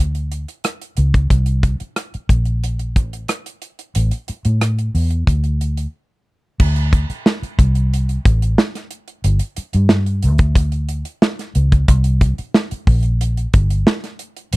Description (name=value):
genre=lush 1970s-style soul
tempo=91 BPM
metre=4/4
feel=straight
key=unclear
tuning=A4 = 440 Hz
part: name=vintage muted fingered electric bass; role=bass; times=0.0-14.6 s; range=G1 to A2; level=-16 LUFS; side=equal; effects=none
part: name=modern studio drum kit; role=drums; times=0.1-14.6 s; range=crash cymbal, hi-hat, kick drum, rim click, snare drum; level=-16 LUFS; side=equal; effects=none
room=little or no reverb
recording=dry, close 1970s-style studio recording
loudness=-15 LUFS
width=side -21 dB against mid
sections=0.0-6.6 A section; 6.6-14.6 B section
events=break 5.9-6.6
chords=none